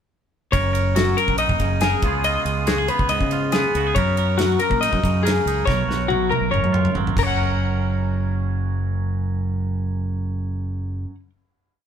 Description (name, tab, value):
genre	math rock and midwest emo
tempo	140 BPM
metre	4/4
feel	straight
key	F# major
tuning	A4 = 440 Hz
part	twangy electric guitar	accompaniment	0.5-11.3 s	F#2 to A#4	-26 LUFS	right 8 dB	none
part	twelve-string electric guitar	arpeggios	0.5-11.2 s	F#4 to F#5	-22 LUFS	left 6 dB	none
part	growling fingered electric bass	bass	0.5-11.0 s	F#1 to C#3	-23 LUFS	equal	overdrive
part	modern studio drum kit	drums	0.5-7.3 s	crash cymbal, kick drum, ride cymbal, snare drum, toms	-25 LUFS	equal	none
room	moderate studio reverb, RT60 0.7 s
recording	band playing live in one room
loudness	-18 LUFS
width	side -8 dB against mid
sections	0.5-7.4 A section; 7.4-10.8 final hit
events	drum fill 5.7-7.4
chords	0.5 F#69; 2.0 C#9; 4.0 F#69; 5.7 Bsus2; 6.5 F#maj7; 7.2 F#5; 7.4 F#